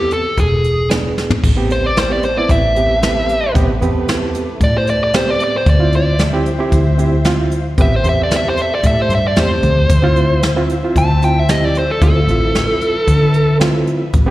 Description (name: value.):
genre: straight-eighth soul blues.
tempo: 113 BPM.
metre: 4/4.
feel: straight.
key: A minor.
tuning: A4 = 441 Hz.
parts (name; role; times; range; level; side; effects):
dark smooth lead guitar; melody; 0.0-13.6 s; G4 to A5; -17 LUFS; equal; overdrive, slapback echo.
overdriven reed electric piano; accompaniment; 0.0-14.3 s; A3 to G#4; -20 LUFS; right 3 dB; fast tremolo, slapback echo.
jazz brush drum kit; drums; 0.1-14.3 s; crash cymbal, hi-hat, kick drum, snare drum, toms; -18 LUFS; equal; none.
vintage muted fingered electric bass; bass; 0.4-14.3 s; E1 to D3; -16 LUFS; equal; none.
muted studio string section; sustained chords; 1.4-14.3 s; F3 to E5; -28 LUFS; left 1 dB; none.
room: little or no reverb.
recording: live gig heard through the venue's PA, recital hall reverb.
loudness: -12 LUFS.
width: side -16 dB against mid.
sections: 0.0-1.4 A section; 1.4-14.3 B section.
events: drum fill 1.2; lead electric guitar solo 1.4-14.3.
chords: 0.4 E7; 1.4 Am9; 5.7 Dm9; 7.8 Am9; 9.9 Dm9.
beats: 0.38 0.91 | 1.44 1.97 2.50 3.02 | 3.55 4.08 4.61 5.14 | 5.67 6.19 6.72 7.25 | 7.78 8.31 8.84 9.37 | 9.90 10.43 10.96 11.49 | 12.02 12.55 13.08 13.61 | 14.14.